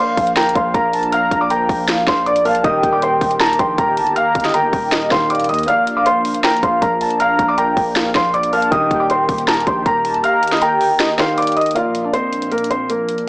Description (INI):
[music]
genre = hip hop, trap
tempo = 158 BPM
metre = 4/4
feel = half-time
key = Bb major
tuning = A4 = 439 Hz
[part]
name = felt-muted upright piano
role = melody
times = 0.0-13.3 s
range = Bb3 to F6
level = -17 LUFS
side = equal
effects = low-pass filter
[part]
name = warm velvety synth lead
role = second line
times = 0.0-11.7 s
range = D5 to Bb5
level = -19 LUFS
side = equal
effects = chorus, analog delay
[part]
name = dark baby grand piano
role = accompaniment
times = 0.0-13.3 s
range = Eb3 to F5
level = -24 LUFS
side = equal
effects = low-pass filter
[part]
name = warm analog pad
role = sustained chords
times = 0.0-13.3 s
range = Bb2 to G4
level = -26 LUFS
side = equal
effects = chorus
[part]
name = long sustained 808-style bass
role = bass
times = 0.2-10.2 s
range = Eb1 to Eb2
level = -30 LUFS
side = equal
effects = none
[part]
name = trap drum kit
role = drums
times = 0.2-13.3 s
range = finger snaps, hi-hat, kick drum, snare drum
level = -21 LUFS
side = equal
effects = none
[sound]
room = little or no reverb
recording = dry, gritty hardware recording, cassette tape, small speaker sound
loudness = -13 LUFS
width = side -25 dB against mid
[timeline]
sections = 0.0-11.8 A section; 11.8-13.3 B section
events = kick muted 5.7-6.4, 10.2-11.8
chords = 0.0 Bb; 2.6 Eb; 5.7 Bb; 8.7 Eb; 11.8 Bb